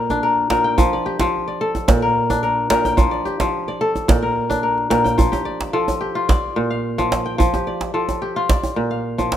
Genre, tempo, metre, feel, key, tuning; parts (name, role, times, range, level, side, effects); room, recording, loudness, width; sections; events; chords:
west african traditional, West African string and xylophone music; 109 BPM; 4/4; straight; F major; A4 = 442 Hz
kora; arpeggios; 0.0-9.4 s; Bb2 to G5; -18 LUFS; left 1 dB
djembe; percussion; 0.1-9.4 s; -19 LUFS; right 1 dB
light reverb; close, detailed microphones; -17 LUFS; side -10 dB against mid
0.0-5.2 A section; 5.2-9.4 B section
0.0 Bb; 0.8 F; 1.9 Bb; 3.0 F; 4.1 Bb; 5.2 F; 6.3 Bb; 7.4 F; 8.5 Bb